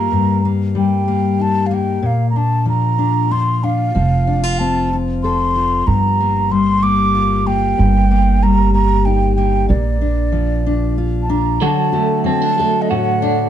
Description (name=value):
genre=folk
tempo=94 BPM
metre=3/4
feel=straight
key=unclear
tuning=A4 = 440 Hz
part: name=mellow hollow wooden flute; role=melody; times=0.0-13.5 s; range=D5 to D6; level=-19 LUFS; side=right 2 dB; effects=none
part: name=fingerpicked steel-string acoustic guitar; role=accompaniment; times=0.0-13.5 s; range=G2 to A4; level=-17 LUFS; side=left 3 dB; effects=none
part: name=upright bass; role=bass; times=4.0-11.6 s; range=F1 to Bb1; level=-18 LUFS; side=right 2 dB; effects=none
part: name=electric guitar through a small old amp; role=arpeggios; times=11.6-13.5 s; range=F#3 to F#4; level=-18 LUFS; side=right 6 dB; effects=tremolo
room=moderate small room reverb, RT60 0.5 s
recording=dark, warm production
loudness=-14 LUFS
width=side -10 dB against mid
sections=0.0-11.6 A section; 11.6-13.5 B section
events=none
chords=0.1 Eb/G; 2.0 Bb; 3.9 F; 5.9 Gm7; 7.8 Eb/G; 9.7 Bb; 11.6 D